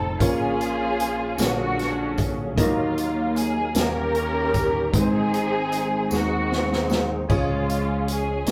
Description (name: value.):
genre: slow gospel.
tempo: 51 BPM (dotted quarters).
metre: 6/8.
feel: straight.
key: Db major.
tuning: A4 = 441 Hz.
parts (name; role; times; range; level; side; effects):
muted studio string section; melody; 0.0-8.5 s; Ab3 to Bb4; -28 LUFS; equal; none.
warm grand piano; accompaniment; 0.0-8.5 s; Ab2 to Eb5; -30 LUFS; equal; none.
percussive tonewheel organ; sustained chords; 0.0-8.5 s; D3 to Bb4; -34 LUFS; equal; fast rotary speaker, chorus vibrato.
fingered electric bass; bass; 0.0-8.5 s; F1 to Eb2; -32 LUFS; equal; none.
swinging big-band drum kit; drums; 0.2-8.5 s; hi-hat, kick drum, snare drum, splash cymbal; -28 LUFS; equal; none.
tambourine; percussion; 0.6-8.5 s; none; -42 LUFS; equal; none.
room: moderate studio reverb, RT60 0.6 s.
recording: band playing live in one room.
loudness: -23 LUFS.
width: mono.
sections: 0.0-8.5 A section.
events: drum fill 6.1-7.3.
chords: 0.2 Bbm; 1.4 Bb7alt; 2.6 Ebm; 3.8 Eb7; 4.9 Ab; 7.3 Db.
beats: | 0.20 1.39 | 2.57 3.75 | 4.93 6.11 | 7.29 8.47.